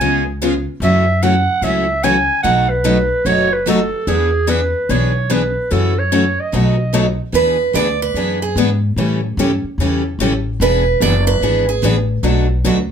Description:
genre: acoustic string swing (jazz manouche).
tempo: 147 BPM.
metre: 4/4.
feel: swing 64% on 8ths.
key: E mixolydian.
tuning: A4 = 440 Hz.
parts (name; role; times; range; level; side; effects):
growling clarinet; melody; 0.0-7.2 s; G#4 to G#5; -17 LUFS; right 2 dB; none.
picked steel-string acoustic guitar; accompaniment; 0.0-12.8 s; B2 to G#4; -20 LUFS; left 6 dB; none.
picked steel-string acoustic guitar; accompaniment; 0.0-12.8 s; B2 to B4; -21 LUFS; right 4 dB; none.
upright bass; bass; 0.0-12.9 s; E1 to A2; -19 LUFS; left 1 dB; none.
picked steel-string acoustic guitar; second line; 7.4-11.8 s; G#4 to D5; -16 LUFS; right 5 dB; none.
room: moderate club reverb, RT60 0.6 s.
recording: none.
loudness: -13 LUFS.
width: side -8 dB against mid.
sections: 0.0-7.3 A section; 7.3-12.9 B section.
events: steel-string acoustic guitar solo 7.3-12.9.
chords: 0.0 C#7; 0.8 F#m7; 2.4 B7; 4.1 E7; 5.7 F#m7; 6.5 B7; 7.3 E7; 9.0 A7; 10.6 E7; 12.2 Bm7.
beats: 0.00 0.41 | 0.81 1.22 1.63 2.04 | 2.44 2.85 3.26 3.67 | 4.08 4.48 4.89 5.30 | 5.71 6.12 6.53 6.93 | 7.34 7.75 8.16 8.57 | 8.98 9.38 9.79 10.20 | 10.61 11.02 11.43 11.83 | 12.24 12.65.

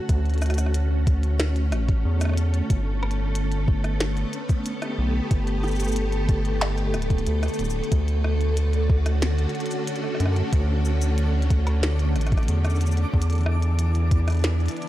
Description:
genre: IDM.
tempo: 92 BPM.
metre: 4/4.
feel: straight.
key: D major.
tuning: A4 = 441 Hz.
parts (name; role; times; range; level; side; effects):
soft string machine; sustained chords; 0.0-14.9 s; D3 to A4; -28 LUFS; equal; ensemble chorus.
round analog bass; bass; 0.1-14.7 s; D1 to F#2; -22 LUFS; equal; tube saturation.
electronic kick drum; drums; 0.1-14.2 s; none; -21 LUFS; equal; overdrive, studio reverb.
glitchy drum kit; drums; 0.1-14.9 s; hi-hat, rim click, shaker, snare drum; -31 LUFS; equal; overdrive, studio reverb.
twinkling granular texture; texture; 8.7-14.9 s; D3 to D6; -38 LUFS; equal; built-in reverb.
room: little or no reverb.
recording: dry, gritty hardware recording.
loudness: -21 LUFS.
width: side -14 dB against mid.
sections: 0.0-14.9 A section.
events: none.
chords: 0.0 Dmaj7; 2.7 Gadd9; 7.9 Dmaj7; 13.1 Em7.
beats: | 0.09 0.74 1.40 2.05 | 2.70 3.35 4.00 4.66 | 5.31 5.96 6.61 7.27 | 7.92 8.57 9.22 9.88 | 10.53 11.18 11.83 12.48 | 13.13 13.79 14.44.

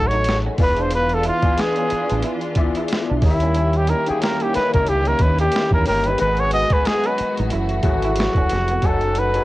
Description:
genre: R&B, neo-soul.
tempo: 91 BPM.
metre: 4/4.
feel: swing 58% on 16ths.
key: unclear.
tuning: A4 = 441 Hz.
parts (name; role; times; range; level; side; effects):
warm trumpet; melody; 0.0-9.4 s; E4 to D#5; -21 LUFS; equal; cassette tape.
overdriven tine electric piano; accompaniment; 0.0-9.4 s; D#3 to G#5; -25 LUFS; left 6 dB; ensemble chorus, cassette tape.
rich studio string section; sustained chords; 0.0-9.4 s; D#3 to F#4; -30 LUFS; equal; cassette tape.
clear trombone section; stabs; 0.0-8.5 s; D#3 to G#4; -32 LUFS; right 6 dB; cassette tape, tape echo.
deep dub fingered electric bass; bass; 0.0-9.4 s; E1 to E2; -22 LUFS; equal; none.
electric guitar through a small old amp; second line; 0.1-9.3 s; A#3 to F#4; -30 LUFS; right 6 dB; cassette tape.
boom bap sampler-style drum kit; drums; 0.1-9.4 s; hi-hat, kick drum, snare drum; -22 LUFS; equal; cassette tape.
room: light reverb.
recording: home recording on cassette.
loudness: -16 LUFS.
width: side -17 dB against mid.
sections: 0.0-8.8 A section.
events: trumpet solo 0.0-8.8.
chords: 0.0 F#m69; 0.6 E7b9; 3.2 D#7b9; 6.2 G#m7; 7.5 F#m9; 8.8 F#m69.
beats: 0.26 | 0.91 1.57 2.23 2.89 | 3.55 4.21 4.87 5.53 | 6.19 6.85 7.51 8.17 | 8.83.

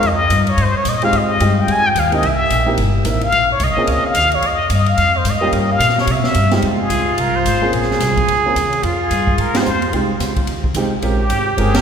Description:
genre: jazz, small-group swing and bop.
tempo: 218 BPM.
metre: 4/4.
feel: swing 60% on 8ths.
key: F minor.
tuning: A4 = 439 Hz.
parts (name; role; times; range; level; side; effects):
trumpet with plunger mute; melody; 0.0-11.8 s; G4 to Ab5; -17 LUFS; left 2 dB; none.
upright bass; bass; 0.0-11.8 s; G1 to C3; -19 LUFS; equal; none.
open jazz drum kit; drums; 0.0-11.8 s; hi-hat, kick drum, ride cymbal, snare drum; -24 LUFS; right 1 dB; none.
warm baby grand piano; accompaniment; 1.0-11.7 s; G3 to Bb4; -22 LUFS; right 1 dB; none.
warm trumpet; second line; 6.6-11.8 s; F4 to Ab4; -19 LUFS; right 2 dB; none.
room: wet church reverb, RT60 3.3 s.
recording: recorded in a church or concert hall.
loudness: -13 LUFS.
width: side -7 dB against mid.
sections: 0.0-6.6 A section; 6.6-11.8 B section.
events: muted trumpet solo 0.0-6.6; band accent 9.5.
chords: 0.0 Fm7; 2.2 C7#9; 3.3 Bbm7; 4.4 Fm7; 5.5 Gm7b5; 6.1 C; 6.6 Fm7; 7.7 Bbm7; 8.8 Fm7; 11.0 Bbm7.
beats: | 0.03 0.30 0.58 0.85 | 1.13 1.40 1.68 1.95 | 2.23 2.50 2.78 3.05 | 3.33 3.60 3.88 4.15 | 4.43 4.70 4.98 5.25 | 5.53 5.80 6.08 6.35 | 6.63 6.90 7.18 7.45 | 7.73 8.00 8.28 8.55 | 8.83 9.10 9.38 9.65 | 9.93 10.20 10.48 10.75 | 11.03 11.30 11.58.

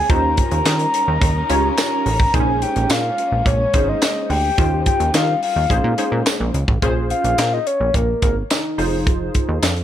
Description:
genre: early-eighties boogie funk.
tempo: 107 BPM.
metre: 4/4.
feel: straight.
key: Bb dorian, Bb minor from 6.8 s.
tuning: A4 = 441 Hz.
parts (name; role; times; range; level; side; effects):
soft octave-layered synth lead; melody; 0.0-9.0 s; Eb4 to Bb5; -20 LUFS; left 2 dB; chorus.
warm studio string section; sustained chords; 0.0-6.8 s; G3 to Eb4; -31 LUFS; right 1 dB; none.
plucky analog bass; bass; 0.0-9.8 s; F1 to Eb3; -21 LUFS; right 1 dB; none.
funky polysynth comp; accompaniment; 0.1-9.7 s; C4 to Db5; -24 LUFS; right 1 dB; chorus.
tight funk drum kit; drums; 0.1-9.8 s; handclaps, hi-hat, kick drum, snare drum; -20 LUFS; equal; none.
tambourine; percussion; 0.7-9.8 s; none; -28 LUFS; right 10 dB; none.
room: light reverb, small room ambience.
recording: none.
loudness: -16 LUFS.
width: side -11 dB against mid.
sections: 0.0-6.8 A section; 6.8-9.8 B section.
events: soft synth lead solo 6.8-9.8.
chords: 0.1 Eb13; 2.3 Bbm11; 4.6 Eb13; 5.7 Bbm11; 6.8 Bbm9; 8.8 Fm7.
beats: | 0.10 0.66 1.22 1.78 | 2.34 2.90 3.46 4.02 | 4.58 5.14 5.70 6.26 | 6.83 7.39 7.95 8.51 | 9.07 9.63.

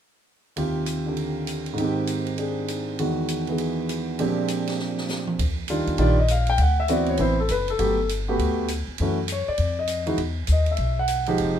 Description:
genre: jazz piano trio.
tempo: 200 BPM.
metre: 4/4.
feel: swing 62% on 8ths.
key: unclear.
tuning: A4 = 441 Hz.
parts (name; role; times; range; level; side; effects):
warm concert grand piano; melody; 0.6-11.6 s; Eb2 to G5; -24 LUFS; equal; none.
open jazz drum kit; drums; 0.6-11.5 s; hi-hat, kick drum, ride cymbal, snare drum, toms; -33 LUFS; right 3 dB; none.
upright bass; bass; 5.4-11.6 s; F1 to Gb2; -24 LUFS; equal; none.
room: light reverb.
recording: minimal, uncompressed stereo recording.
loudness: -22 LUFS.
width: side -9 dB against mid.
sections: 0.6-5.4 A section; 5.4-11.6 B section.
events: drum fill 4.8-5.4.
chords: 0.6 Eb69; 1.8 Abmaj7; 3.0 Emaj9; 4.2 Bb13; 5.4 Ebmaj9; 6.6 D13; 7.8 Gmaj9; 9.0 Gbm7; 9.6 F7(no3); 10.2 Emaj7sus2.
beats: | 0.57 0.88 1.18 1.48 | 1.78 2.08 2.38 2.69 | 2.99 3.29 3.59 3.89 | 4.19 4.49 4.79 5.09 | 5.39 5.69 5.99 6.29 | 6.59 6.89 7.19 7.49 | 7.79 8.09 8.39 8.69 | 8.99 9.29 9.59 9.89 | 10.19 10.49 10.79 11.09 | 11.39.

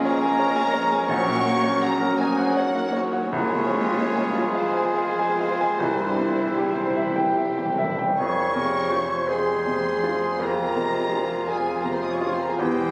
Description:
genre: classical, romantic movement for piano and orchestra.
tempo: 47-58 BPM (dotted quarters).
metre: 12/8.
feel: rubato.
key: F minor.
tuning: A4 = 440 Hz.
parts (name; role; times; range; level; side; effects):
rich studio violin section; melody; 0.0-12.9 s; C5 to Eb6; -33 LUFS; equal; none.
warm baby grand piano; melody; 0.0-12.9 s; Bb1 to Ab5; -27 LUFS; equal; none.
clear oboe; second line; 0.0-12.9 s; F4 to C5; -37 LUFS; equal; none.
dark clarinet; second line; 0.0-12.9 s; Db4 to Eb5; -34 LUFS; equal; none.
hollow concert flute; second line; 0.0-12.9 s; F4 to Eb6; -35 LUFS; equal; none.
warm symphonic violin section; second line; 0.0-12.9 s; G3 to C5; -39 LUFS; equal; none.
mellow bassoon; accompaniment; 0.0-12.9 s; F3 to Bb3; -34 LUFS; equal; none.
warm symphonic viola section; accompaniment; 0.0-12.9 s; F3 to C4; -36 LUFS; equal; none.
warm French horn section; sustained chords; 0.0-12.9 s; Gb3 to C5; -32 LUFS; equal; none.
dark trumpet section; stabs; 0.1-7.8 s; C4 to Db5; -37 LUFS; equal; none.
rich studio double bass section; bass; 1.1-12.9 s; E1 to C2; -41 LUFS; equal; none.
warm symphonic cello section; bass; 1.1-12.9 s; E2 to C3; -42 LUFS; equal; none.
timpani; percussion; 5.8-8.1 s; C3; -36 LUFS; equal; none.
room: moderate scoring stage reverb, RT60 1.7 s.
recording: recorded on a phone in the room, club reverb.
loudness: -23 LUFS.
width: mono.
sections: 0.0-8.2 A section; 8.2-12.9 B section.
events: timpani fill 5.8-8.2.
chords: 0.0 Bbm7; 1.1 Gb/Bb; 3.3 Fm/C; 5.8 C; 8.2 Fm.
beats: 0.05 1.09 2.19 | 3.34 4.55 5.80 6.98 | 8.18 9.28 10.40 11.48 | 12.57.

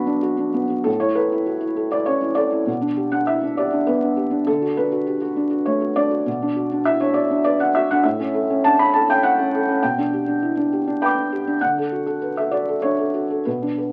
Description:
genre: neoclassical minimalist piano.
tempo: 100 BPM.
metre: 3/4.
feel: rubato.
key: unclear.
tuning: A4 = 439 Hz.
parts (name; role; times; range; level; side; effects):
felt-muted upright piano; solo; 0.0-13.9 s; B1 to G6; -20 LUFS; equal; none.
room: moderate small room reverb, RT60 0.5 s.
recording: very old 78 rpm record, vinyl crackle.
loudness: -20 LUFS.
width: mono.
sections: 0.9-13.9 A section.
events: none.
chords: 0.0 Bm; 0.9 A; 2.7 G/B; 4.5 D; 6.3 Bm; 8.0 A; 9.8 G/B; 11.6 D.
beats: 0.25 | 0.87 1.48 2.07 | 2.67 3.28 3.88 | 4.47 5.07 5.67 | 6.26 6.85 7.44 | 8.03 8.62 9.22 | 9.81 10.41 11.01 | 11.61 12.22 12.83 | 13.46.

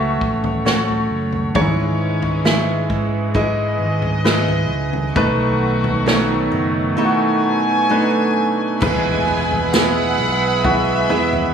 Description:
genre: pop ballad.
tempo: 66 BPM.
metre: 4/4.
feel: straight.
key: E major.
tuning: A4 = 445 Hz.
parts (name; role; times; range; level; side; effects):
warm concert grand piano; accompaniment; 0.0-11.5 s; G#2 to E5; -20 LUFS; left 1 dB; none.
warm studio string section; sustained chords; 0.0-11.5 s; D#3 to B5; -23 LUFS; right 1 dB; none.
picked steel-string acoustic guitar; arpeggios; 0.0-11.5 s; G#2 to A4; -25 LUFS; right 7 dB; none.
fingered electric bass; bass; 0.0-11.5 s; F#1 to G#2; -22 LUFS; equal; none.
unplugged drum kit; drums; 0.2-11.5 s; crash cymbal, kick drum, snare drum, toms; -22 LUFS; right 1 dB; none.
warm studio violin section; second line; 8.8-11.5 s; E5 to G#5; -23 LUFS; right 2 dB; none.
impact; sound effects; 8.9-11.5 s; none; -34 LUFS; right 2 dB; none.
tambourine; percussion; 9.7-9.9 s; none; -31 LUFS; left 5 dB; none.
room: light reverb, studio ambience.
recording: studio reverb.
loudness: -15 LUFS.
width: side -7 dB against mid.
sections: 0.0-8.8 A section; 8.8-11.5 B section.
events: impact 8.8-11.5.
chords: 0.0 F#m/A; 1.6 C#m/G#; 5.2 B7; 8.8 E.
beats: 0.66 | 1.56 2.45 3.35 4.25 | 5.16 6.07 6.98 7.90 | 8.82 9.73 10.64.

